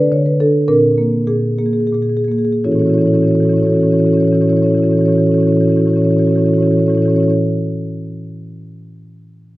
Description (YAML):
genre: classical, contemporary piece for solo marimba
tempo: 54-74 BPM (dotted quarters)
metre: 6/8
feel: rubato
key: A major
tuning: A4 = 440 Hz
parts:
  - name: marimba with soft mallets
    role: solo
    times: 0.0-7.3 s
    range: A2 to D5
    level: -12 LUFS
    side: equal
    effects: none
room: light reverb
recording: close, detailed microphones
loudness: -12 LUFS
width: side -18 dB against mid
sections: 0.0-2.6 A section; 2.6-6.7 B section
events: slowing down 0.0-2.6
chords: 0.0 Dsus2; 0.7 Bb9; 2.6 A6